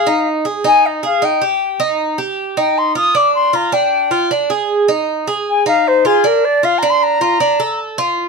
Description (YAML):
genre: latin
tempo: 155 BPM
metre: 4/4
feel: straight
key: unclear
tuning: A4 = 438 Hz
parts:
  - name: silver concert flute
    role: melody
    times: 0.0-7.8 s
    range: Ab4 to Eb6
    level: -13 LUFS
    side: left 4 dB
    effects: none
  - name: Cuban tres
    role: arpeggios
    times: 0.0-8.3 s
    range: D4 to A4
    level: -16 LUFS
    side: right 4 dB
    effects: none
room: light reverb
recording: none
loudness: -13 LUFS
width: side -4 dB against mid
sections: 0.0-8.3 A section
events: flute solo 0.0-8.3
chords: 0.1 Ab5; 1.6 Ebadd9; 3.2 Dmadd11; 4.7 Fm7; 6.2 Bbmaj7/D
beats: | 0.07 0.46 0.84 1.23 | 1.61 2.00 2.38 2.77 | 3.15 3.54 3.92 4.31 | 4.70 5.08 5.47 5.86 | 6.25 6.63 7.02 7.41 | 7.79 8.18